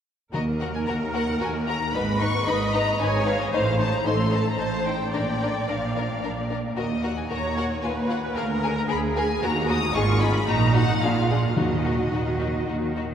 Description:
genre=quick classical-period movement for symphony orchestra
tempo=112 BPM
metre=3/4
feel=straight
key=Eb minor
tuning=A4 = 440 Hz
part: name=rich studio violin section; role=melody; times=0.3-12.7 s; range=Eb5 to Eb6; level=-30 LUFS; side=left 3 dB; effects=none
part: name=warm studio violin section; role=second line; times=0.3-13.0 s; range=D4 to C5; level=-30 LUFS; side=left 3 dB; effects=none
part: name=rich studio viola section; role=accompaniment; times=0.3-12.9 s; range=Eb4 to Eb5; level=-28 LUFS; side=right 1 dB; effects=none
part: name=clear studio cello section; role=bass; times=0.3-13.1 s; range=D2 to Eb3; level=-28 LUFS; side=right 1 dB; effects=none
part: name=rich studio double bass section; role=bass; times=0.3-13.1 s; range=Ab1 to Eb2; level=-28 LUFS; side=right 2 dB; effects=none
part: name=timpani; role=percussion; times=0.3-1.1, 11.6-12.4 s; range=Eb3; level=-32 LUFS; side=left 1 dB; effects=none
room=wet cathedral reverb, RT60 4.9 s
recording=none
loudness=-22 LUFS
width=side -8 dB against mid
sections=0.3-13.1 A section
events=none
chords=0.3 Ebm; 1.9 Abm; 3.5 Adim; 5.1 Bb; 6.8 Ebm; 7.8 F7(b5, no3)/Eb (rootless); 8.4 Bb7/D; 9.4 Ebm; 9.9 Abm; 10.5 Ebm/Bb; 11.0 Bb7; 11.6 Ebm

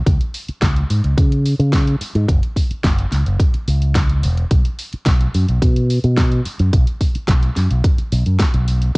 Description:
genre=nu-disco, nu disco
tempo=108 BPM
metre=4/4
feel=straight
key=unclear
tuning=A4 = 442 Hz
part: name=fingered electric bass with an envelope filter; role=bass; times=0.1-9.0 s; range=E1 to C#3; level=-16 LUFS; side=equal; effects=none
part: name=electronic kick drum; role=drums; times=0.1-9.0 s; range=none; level=-16 LUFS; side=equal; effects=small room reverb, cassette tape
part: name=pop drum kit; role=drums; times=0.1-9.0 s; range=hi-hat, snare drum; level=-25 LUFS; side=equal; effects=small room reverb, cassette tape
room=little or no reverb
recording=home recording on cassette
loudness=-14 LUFS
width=side -29 dB against mid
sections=0.0-9.0 A section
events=none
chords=none

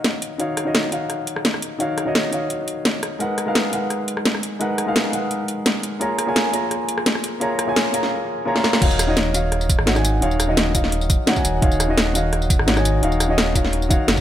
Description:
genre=liquid drum and bass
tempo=171 BPM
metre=4/4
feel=straight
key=Eb minor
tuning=A4 = 440 Hz
part: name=dark grand piano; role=accompaniment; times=0.0-14.2 s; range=Eb3 to Bb5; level=-22 LUFS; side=equal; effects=dub echo
part: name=drum and bass drum kit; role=drums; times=0.0-14.2 s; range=crash cymbal, hi-hat, rim click, snare drum, tambourine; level=-21 LUFS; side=equal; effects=none
part: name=sub bass with octave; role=bass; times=8.8-14.2 s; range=Eb1 to Ab1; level=-22 LUFS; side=equal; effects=none
part: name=electronic kick drum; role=drums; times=8.8-14.2 s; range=none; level=-19 LUFS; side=equal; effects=none
room=light reverb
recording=none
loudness=-18 LUFS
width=side -11 dB against mid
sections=0.0-8.8 A section; 8.8-14.2 B section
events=build-up 0.0-8.8; drum fill 8.6; drop 8.8-14.2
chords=0.0 Ebm9; 3.2 Abm9; 6.0 Bbm7; 8.8 Ebm9

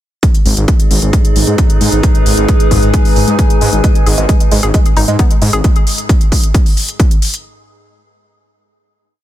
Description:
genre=driving peak-time techno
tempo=133 BPM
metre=4/4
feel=straight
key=G# minor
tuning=A4 = 440 Hz
part: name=metallic inharmonic drone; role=drone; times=0.5-5.7 s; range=G#2 to G#3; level=-21 LUFS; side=left 3 dB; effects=chorus, built-in reverb, sidechain pumping
part: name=electronic hi-hat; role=drums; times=0.2-7.4 s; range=none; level=-20 LUFS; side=equal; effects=overdrive, studio reverb
part: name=electronic kick drum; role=drums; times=0.2-7.1 s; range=none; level=-10 LUFS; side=equal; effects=overdrive, studio reverb
part: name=warbly tape-like pad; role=texture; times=1.3-5.6 s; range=D#4 to G#5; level=-19 LUFS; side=right 1 dB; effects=chorus, built-in reverb, phaser, sidechain pumping
part: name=detuned saw bass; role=bass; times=0.5-5.6 s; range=G#1 to G#2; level=-13 LUFS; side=equal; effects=sidechain pumping
part: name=woody wave-folded pluck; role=riff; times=3.8-5.6 s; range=G#3 to G#4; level=-20 LUFS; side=right 1 dB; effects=chorus, cassette tape, sidechain pumping, ping-pong delay
room=little or no reverb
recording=dense, heavily limited modern master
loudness=-9 LUFS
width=side -13 dB against mid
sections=0.2-7.4 groove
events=none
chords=0.2 G#m

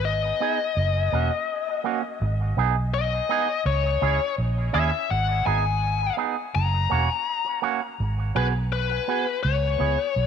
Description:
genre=roots reggae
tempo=83 BPM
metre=4/4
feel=straight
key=G# minor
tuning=A4 = 441 Hz
part: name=biting lead guitar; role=melody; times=0.0-10.3 s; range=B4 to A#5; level=-26 LUFS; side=left 9 dB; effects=overdrive, dub echo
part: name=vintage muted fingered electric bass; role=bass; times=0.0-10.3 s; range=E1 to D#2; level=-24 LUFS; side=right 1 dB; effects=none
part: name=electric guitar with an envelope filter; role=accompaniment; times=0.4-10.0 s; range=A#3 to G#4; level=-28 LUFS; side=right 12 dB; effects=dub echo
room=light reverb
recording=1960s-style stereo with parts hard left and right, nothing above 10.5 kHz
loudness=-22 LUFS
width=side -7 dB against mid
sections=0.0-8.0 A section; 8.0-10.3 B section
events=none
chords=0.0 G#m; 0.8 F#; 2.2 G#m; 3.7 C#m; 5.1 G#m; 6.5 F#; 8.0 G#m7; 9.4 C#m7

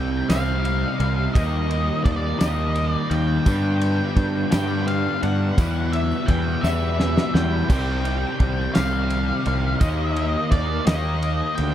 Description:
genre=psychedelic rock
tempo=57 BPM (dotted quarters)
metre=6/8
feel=straight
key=C minor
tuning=A4 = 440 Hz
part: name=octave-fuzz lead guitar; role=melody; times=0.0-11.7 s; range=D5 to G5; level=-27 LUFS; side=left 1 dB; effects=distortion, dub echo
part: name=cranked stack guitar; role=riff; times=0.0-11.7 s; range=E2 to G4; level=-25 LUFS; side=left 1 dB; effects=overdrive, flanger
part: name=fuzz picked electric bass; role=bass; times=0.0-11.7 s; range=C2 to G2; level=-23 LUFS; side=equal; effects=overdrive
part: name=cloth-damped thuddy drum kit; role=drums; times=0.3-11.7 s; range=crash cymbal, kick drum, ride cymbal, snare drum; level=-23 LUFS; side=equal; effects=none
part: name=tambourine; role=percussion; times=0.3-11.3 s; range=none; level=-46 LUFS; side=right 6 dB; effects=none
room=small room ambience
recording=echo-heavy mix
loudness=-19 LUFS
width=side -11 dB against mid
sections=0.0-11.7 A section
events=drum fill 6.6-7.7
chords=0.0 Cm; 1.4 Eb; 3.5 G; 5.6 Em; 7.7 Cm; 9.8 Eb

